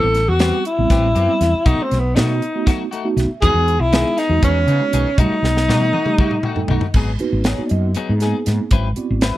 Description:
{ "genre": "electric jazz fusion", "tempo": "238 BPM (eighths)", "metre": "7/8", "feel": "straight", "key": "unclear", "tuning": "A4 = 444 Hz", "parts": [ { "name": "breathy tenor saxophone", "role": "melody", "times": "0.0-6.7 s", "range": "B3 to A4", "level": "-18 LUFS", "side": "left 1 dB", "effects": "none" }, { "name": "mellow tine electric piano", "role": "accompaniment", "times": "0.0-9.4 s", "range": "G3 to A5", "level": "-24 LUFS", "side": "right 4 dB", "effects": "medium stereo tremolo, phaser" }, { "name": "clean electric guitar", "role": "stabs", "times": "0.0-9.4 s", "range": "D#3 to B4", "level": "-26 LUFS", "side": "left 6 dB", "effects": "lush chorus" }, { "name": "woody fretless electric bass", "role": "bass", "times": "0.0-9.3 s", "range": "G#1 to C#3", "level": "-18 LUFS", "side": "equal", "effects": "none" }, { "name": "crisp fusion drum kit", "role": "drums", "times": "0.1-9.3 s", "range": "crash cymbal, hi-hat, kick drum, snare drum, toms", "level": "-19 LUFS", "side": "equal", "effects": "none" } ], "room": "small room ambience", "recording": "dry, close 1970s-style studio recording", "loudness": "-15 LUFS", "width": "side -15 dB against mid", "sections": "0.0-7.0 A section; 7.0-9.4 B section", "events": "tine electric piano fill 2.7-3.4, 6.2-7.0; drum fill 5.4-7.0", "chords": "0.0 Am9; 1.7 B7; 3.4 Emaj7; 5.2 B7b13; 7.0 G#m7; 8.7 G#7alt" }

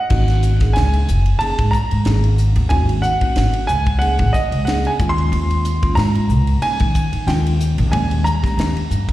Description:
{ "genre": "electric jazz fusion", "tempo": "92 BPM", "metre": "4/4", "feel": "swing 55% on 16ths", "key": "unclear", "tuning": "A4 = 440 Hz", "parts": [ { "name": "bright baby grand piano", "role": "melody", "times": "0.0-9.1 s", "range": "D#5 to B#5", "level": "-22 LUFS", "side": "right 2 dB", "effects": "slapback echo" }, { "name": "bell-like tine electric piano", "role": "accompaniment", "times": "0.1-9.0 s", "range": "G3 to G#4", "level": "-26 LUFS", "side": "right 1 dB", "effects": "medium stereo tremolo, slapback echo" }, { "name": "upright bass", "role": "bass", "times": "0.1-9.1 s", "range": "F#1 to D#3", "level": "-16 LUFS", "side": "equal", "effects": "none" }, { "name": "crisp fusion drum kit", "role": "drums", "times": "0.1-9.1 s", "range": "crash cymbal, hi-hat, kick drum, ride cymbal, snare drum", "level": "-23 LUFS", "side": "equal", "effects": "none" } ], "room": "small room reverb", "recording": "live gig heard through the venue's PA, recital hall reverb", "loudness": "-14 LUFS", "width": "side -15 dB against mid", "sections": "0.1-9.1 A section", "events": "none", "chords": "0.1 G#9sus4; 5.0 D#9sus4" }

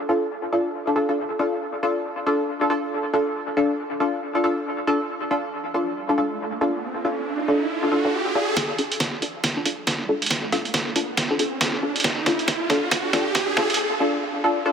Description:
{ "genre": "deep dubstep", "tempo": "138 BPM", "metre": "4/4", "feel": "swing 60% on 16ths, half-time", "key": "D minor", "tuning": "A4 = 436 Hz", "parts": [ { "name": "filtered dub chord stab", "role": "stabs", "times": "0.1-14.7 s", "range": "D4 to A4", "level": "-23 LUFS", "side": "left 1 dB", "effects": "lush chorus, dub echo" }, { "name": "riser", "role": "sound effects", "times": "6.1-13.8 s", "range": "none", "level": "-28 LUFS", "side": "right 2 dB", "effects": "none" }, { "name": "electronic kick drum", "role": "drums", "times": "8.6-13.5 s", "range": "none", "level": "-29 LUFS", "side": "equal", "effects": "high-pass filter on kick" }, { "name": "trip hop sampler-style drum kit", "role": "drums", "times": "8.6-13.8 s", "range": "hi-hat, rim click, snare drum", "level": "-23 LUFS", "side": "right 2 dB", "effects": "high-pass filter on snare, high-pass filter on hats" } ], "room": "moderate huge ambient reverb, RT60 8.1 s", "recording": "high-pass filter", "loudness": "-21 LUFS", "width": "side -7 dB against mid", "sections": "0.0-8.6 A section; 8.6-14.7 B section", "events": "riser 6.1-8.6, 8.6-13.8; build-up 8.6-14.7; drum fill 8.6-13.8; filter sweep on synth stab 8.6-14.7; filter sweep 8.6-14.7", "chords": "0.0 Dm" }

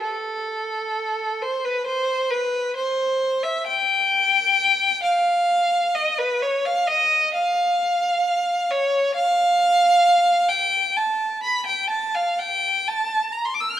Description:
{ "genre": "classical, free, expressive piece for unaccompanied violin", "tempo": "66 BPM", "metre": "4/4", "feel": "uneven beats, rubato", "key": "unclear", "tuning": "A4 = 441 Hz", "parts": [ { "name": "rich violin", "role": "solo", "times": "0.0-13.8 s", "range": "A4 to F6", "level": "-19 LUFS", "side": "equal", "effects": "none" } ], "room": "moderate recital hall reverb, RT60 1.8 s", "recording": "none", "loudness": "-18 LUFS", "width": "side -11 dB against mid", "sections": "0.0-13.8 A section", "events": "none", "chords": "none" }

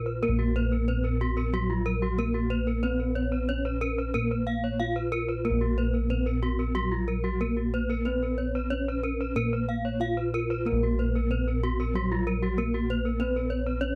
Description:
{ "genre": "Balinese gamelan", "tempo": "92 BPM", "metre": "4/4", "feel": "straight", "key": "Bb pelog", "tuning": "A4 = 440 Hz", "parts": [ { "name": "gamelan-type bronze metallophone", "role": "melody", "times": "0.0-14.0 s", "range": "Gb3 to F4", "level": "-32 LUFS", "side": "equal", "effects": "none" }, { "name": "gamelan-type bronze metallophone", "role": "arpeggios", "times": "0.0-14.0 s", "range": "Gb4 to F5", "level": "-36 LUFS", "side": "equal", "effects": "none" }, { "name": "gamelan-type bossed gongs", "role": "bass", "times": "0.0-14.0 s", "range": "Bb1 to Cb5+35c", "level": "-32 LUFS", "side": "equal", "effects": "none" }, { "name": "gamelan-type bronze metallophone", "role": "arpeggios", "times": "0.1-13.8 s", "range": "F4 to Db5", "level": "-39 LUFS", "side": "equal", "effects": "none" } ], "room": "little or no reverb", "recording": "close, detailed microphones", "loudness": "-28 LUFS", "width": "mono", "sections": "0.0-14.0 A section", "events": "none", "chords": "none" }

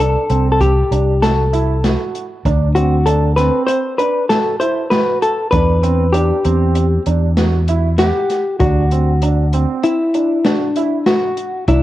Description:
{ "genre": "progressive instrumental, band music in an uneven meter", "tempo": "98 BPM", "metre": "5/4", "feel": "straight", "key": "D mixolydian", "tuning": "A4 = 441 Hz", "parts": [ { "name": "hollow-body jazz guitar", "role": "melody", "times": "0.0-11.8 s", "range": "D4 to C5", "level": "-16 LUFS", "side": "left 2 dB", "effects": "tape echo" }, { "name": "dark grand piano", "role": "arpeggios", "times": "0.0-11.8 s", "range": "C4 to F#5", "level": "-22 LUFS", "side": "right 7 dB", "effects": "cassette tape, tape echo" }, { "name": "fingered electric bass", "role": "bass", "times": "0.0-11.8 s", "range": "C2 to E2", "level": "-15 LUFS", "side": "equal", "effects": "none" }, { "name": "open jazz drum kit", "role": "drums", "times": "0.3-11.8 s", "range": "hi-hat, kick drum, snare drum", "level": "-20 LUFS", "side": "equal", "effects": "cassette tape" } ], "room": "light reverb, studio reverb", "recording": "home recording on cassette", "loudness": "-13 LUFS", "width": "side -14 dB against mid", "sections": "0.0-11.8 A section", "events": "none", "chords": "0.0 Csus2; 2.4 D7; 5.5 Em7; 8.6 D7" }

